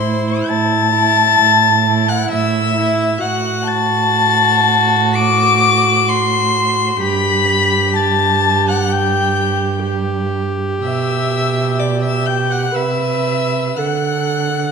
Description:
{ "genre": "classical, slow romantic movement for string quartet", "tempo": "52-67 BPM", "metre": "4/4", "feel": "rubato", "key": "G major", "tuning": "A4 = 440 Hz", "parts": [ { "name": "dark violin", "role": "melody", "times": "0.0-14.7 s", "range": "C6 to D7", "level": "-18 LUFS", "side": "left 10 dB", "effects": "none" }, { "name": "dark violin", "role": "second line", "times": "0.0-14.7 s", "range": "C5 to D6", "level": "-18 LUFS", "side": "left 2 dB", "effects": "none" }, { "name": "rich viola", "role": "accompaniment", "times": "0.0-14.7 s", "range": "E4 to B4", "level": "-20 LUFS", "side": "right 3 dB", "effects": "none" }, { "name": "dark cello", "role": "bass", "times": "0.0-14.7 s", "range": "G2 to D3", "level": "-19 LUFS", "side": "right 5 dB", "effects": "none" } ], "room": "wet recital hall reverb, RT60 1.7 s", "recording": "none", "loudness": "-13 LUFS", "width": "side -5 dB against mid", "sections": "0.0-14.7 A section", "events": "none", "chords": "0.0 Am; 3.2 D7/A; 7.0 G; 10.8 G/B; 12.8 Cmaj7; 13.8 D" }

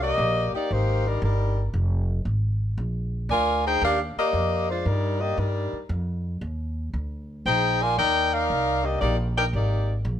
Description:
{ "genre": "jazz, big band swing", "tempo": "116 BPM", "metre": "4/4", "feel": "swing 67% on 8ths", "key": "Eb major", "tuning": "A4 = 440 Hz", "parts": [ { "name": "dark saxophone section", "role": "melody", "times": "0.0-9.9 s", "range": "G3 to Ab5", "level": "-23 LUFS", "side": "left 1 dB", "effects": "none" }, { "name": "upright bass", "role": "bass", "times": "0.0-10.2 s", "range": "F1 to G2", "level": "-26 LUFS", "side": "equal", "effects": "none" } ], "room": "light reverb", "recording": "none", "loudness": "-22 LUFS", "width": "side -10 dB against mid", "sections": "0.0-10.2 A section", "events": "none", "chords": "0.0 Cm9; 1.7 Fm; 2.8 Bb7; 3.8 Ebmaj7; 5.9 Ebsus2; 6.9 Bb7; 8.0 Ebmaj7" }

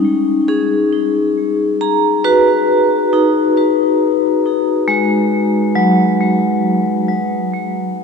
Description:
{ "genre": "ambient", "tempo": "68 BPM", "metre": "4/4", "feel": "straight", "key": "unclear", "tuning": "A4 = 440 Hz", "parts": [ { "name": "vibraphone with hard mallets", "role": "solo", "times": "0.0-8.0 s", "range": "F#3 to Bb5", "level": "-12 LUFS", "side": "left 1 dB", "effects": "ping-pong delay" } ], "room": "wet cathedral reverb, RT60 6.2 s", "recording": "cassette tape", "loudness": "-12 LUFS", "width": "side -5 dB against mid", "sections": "0.0-7.1 A section", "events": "none", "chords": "0.0 B6; 7.1 N.C." }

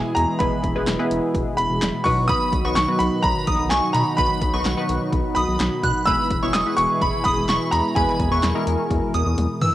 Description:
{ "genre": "synth-pop", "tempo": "127 BPM", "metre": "4/4", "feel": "straight", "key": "unclear", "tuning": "A4 = 439 Hz", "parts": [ { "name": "clear grand piano", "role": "melody", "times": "0.0-9.3 s", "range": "G#5 to E6", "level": "-24 LUFS", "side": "equal", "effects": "analog delay" }, { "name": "warm analog pad", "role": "sustained chords", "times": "0.0-9.7 s", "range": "B2 to A#4", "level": "-26 LUFS", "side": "equal", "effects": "chorus, cassette tape" }, { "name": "rubbery square bass", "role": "bass", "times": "0.0-9.7 s", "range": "E1 to E3", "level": "-25 LUFS", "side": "equal", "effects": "none" }, { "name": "punchy analog drum machine", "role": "drums", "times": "0.2-9.7 s", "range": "handclaps, hi-hat, kick drum, snare drum, toms", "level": "-26 LUFS", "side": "equal", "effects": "overdrive, cassette tape" }, { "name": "funky polysynth comp", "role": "accompaniment", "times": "0.4-9.1 s", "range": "F#3 to C#5", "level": "-27 LUFS", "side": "left 1 dB", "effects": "chorus, cassette tape" }, { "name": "shimmering bell with halo", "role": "second line", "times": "2.3-9.7 s", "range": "B5 to F#6", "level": "-25 LUFS", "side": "equal", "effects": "ensemble chorus, cassette tape, analog delay" } ], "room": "moderate spring reverb, RT60 1.8 s", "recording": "home recording on cassette", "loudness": "-18 LUFS", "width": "side -14 dB against mid", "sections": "0.0-9.7 A section", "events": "drum fill 9.4-9.7", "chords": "0.0 E; 2.1 B; 6.1 E" }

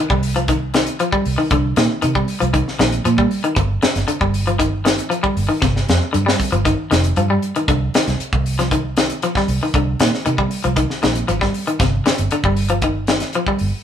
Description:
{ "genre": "afrobeat", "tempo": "117 BPM", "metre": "4/4", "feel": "straight", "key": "C minor", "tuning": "A4 = 440 Hz", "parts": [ { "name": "electric guitar at the edge of break-up", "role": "arpeggios", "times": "0.0-13.7 s", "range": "C3 to G3", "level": "-19 LUFS", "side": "left 2 dB", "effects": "none" }, { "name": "vintage muted fingered electric bass", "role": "bass", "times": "0.1-13.7 s", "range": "F1 to C3", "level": "-20 LUFS", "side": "right 2 dB", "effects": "none" }, { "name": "tight funk drum kit", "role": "drums", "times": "0.1-13.7 s", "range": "hi-hat, kick drum, snare drum", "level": "-20 LUFS", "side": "equal", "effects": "none" } ], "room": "light reverb", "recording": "band playing live in one room", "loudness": "-15 LUFS", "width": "side -9 dB against mid", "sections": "0.0-13.8 A section", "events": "none", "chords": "0.0 Cm7; 3.6 G5; 7.7 Cm; 11.8 G5" }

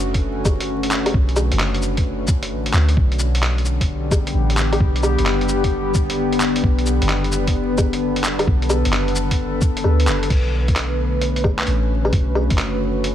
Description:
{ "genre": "future garage", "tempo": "131 BPM", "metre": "4/4", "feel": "swing 67% on 16ths", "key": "B minor", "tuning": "A4 = 441 Hz", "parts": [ { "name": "warbly tape-like pad", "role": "sustained chords", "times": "0.0-13.1 s", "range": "D3 to B4", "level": "-22 LUFS", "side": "left 2 dB", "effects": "chorus, built-in reverb, sidechain pumping" }, { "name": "soft 808-style bass", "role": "bass", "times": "0.0-13.1 s", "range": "F#1 to D2", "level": "-21 LUFS", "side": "equal", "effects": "sidechain pumping" }, { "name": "electronic kick drum", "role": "drums", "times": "0.1-12.6 s", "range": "none", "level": "-18 LUFS", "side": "equal", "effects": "studio reverb" }, { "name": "lo-fi sampler-style drum kit", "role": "drums", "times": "0.1-13.1 s", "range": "cabasa, crash cymbal, handclaps, hi-hat, woodblock", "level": "-24 LUFS", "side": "equal", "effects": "studio reverb" } ], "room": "light reverb, digital ambience", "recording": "vinyl crackle", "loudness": "-16 LUFS", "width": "side -11 dB against mid", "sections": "0.0-10.3 A section; 10.3-13.1 B section", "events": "kick drops out 9.8-10.3", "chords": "0.0 Bm9; 3.0 G; 10.3 Bm9" }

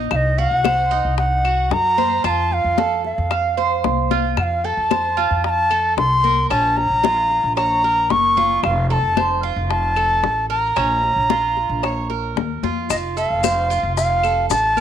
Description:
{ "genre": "latin, Cuban son and guajira", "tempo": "113 BPM", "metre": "4/4", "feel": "straight", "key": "unclear", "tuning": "A4 = 436 Hz", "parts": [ { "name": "Cuban tres", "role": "arpeggios", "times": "0.0-14.8 s", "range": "Db4 to F5", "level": "-25 LUFS", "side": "right 9 dB", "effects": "none" }, { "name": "upright bass", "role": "bass", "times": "0.0-14.8 s", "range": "F1 to Gb2", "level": "-24 LUFS", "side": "equal", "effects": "none" }, { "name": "bright reedy bansuri", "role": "melody", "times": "0.1-14.8 s", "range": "Eb5 to Db6", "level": "-18 LUFS", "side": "equal", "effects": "none" }, { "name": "bongos", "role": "percussion", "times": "0.1-14.8 s", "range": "none", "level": "-26 LUFS", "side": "left 14 dB", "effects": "none" }, { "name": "claves", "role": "percussion", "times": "0.1-14.5 s", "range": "none", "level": "-29 LUFS", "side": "left 11 dB", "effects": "none" }, { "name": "congas", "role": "percussion", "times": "0.1-14.8 s", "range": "none", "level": "-26 LUFS", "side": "left 15 dB", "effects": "none" }, { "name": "maracas", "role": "percussion", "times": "12.9-14.8 s", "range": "none", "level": "-30 LUFS", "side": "left 12 dB", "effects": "none" } ], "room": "light reverb", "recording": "1960s-style stereo with parts hard left and right", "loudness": "-16 LUFS", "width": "side -9 dB against mid", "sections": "0.0-14.8 A section", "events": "drum fill 4.1", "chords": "0.1 Cdim; 2.2 F; 6.5 Bbm; 8.6 F; 10.8 Bbm; 12.9 F" }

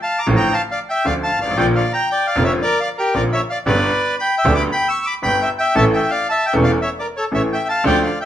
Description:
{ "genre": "tango", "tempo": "115 BPM", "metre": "4/4", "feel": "rubato", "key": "unclear", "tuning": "A4 = 440 Hz", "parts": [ { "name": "bandoneon", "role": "melody", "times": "0.0-8.3 s", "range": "G4 to E6", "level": "-18 LUFS", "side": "left 1 dB", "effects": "none" }, { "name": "bright upright piano", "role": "accompaniment", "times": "0.3-8.1 s", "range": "E1 to A4", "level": "-20 LUFS", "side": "equal", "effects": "none" }, { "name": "bright double bass", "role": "bass", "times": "0.3-8.1 s", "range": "E1 to D2", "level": "-21 LUFS", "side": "right 2 dB", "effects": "none" }, { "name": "dark studio string section", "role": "stabs", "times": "7.8-8.1 s", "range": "A3 to F4", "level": "-22 LUFS", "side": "equal", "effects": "none" } ], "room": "wet large studio reverb, RT60 0.9 s", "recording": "band playing live in one room", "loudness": "-15 LUFS", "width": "side -11 dB against mid", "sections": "0.0-8.3 A section", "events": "none", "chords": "0.0 Dm; 1.6 Bb; 3.7 G; 5.8 A" }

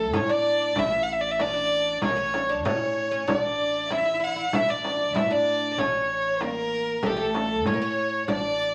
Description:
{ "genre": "Turkish makam ensemble", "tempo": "96 BPM", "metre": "4/4", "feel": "straight", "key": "A makam hicaz", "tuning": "A4 = 440 Hz", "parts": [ { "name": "warm violin", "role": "melody", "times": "0.0-8.7 s", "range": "G4 to F#5-35c", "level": "-27 LUFS", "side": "equal", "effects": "none" }, { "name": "oud", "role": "second line", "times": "0.0-8.7 s", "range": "A3 to E4", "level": "-32 LUFS", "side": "equal", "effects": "none" }, { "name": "rich studio violin section", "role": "second line", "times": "0.0-8.7 s", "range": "A4 to E5", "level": "-38 LUFS", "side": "equal", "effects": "none" }, { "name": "upright bass", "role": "bass", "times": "0.0-8.7 s", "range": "A1 to A2", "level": "-38 LUFS", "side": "equal", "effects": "none" }, { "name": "frame drum", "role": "percussion", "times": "0.1-8.4 s", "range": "none", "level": "-32 LUFS", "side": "equal", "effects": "none" } ], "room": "wet studio reverb, RT60 0.8 s", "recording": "vinyl crackle", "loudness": "-25 LUFS", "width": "mono", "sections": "0.0-8.7 A section", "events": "none", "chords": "none" }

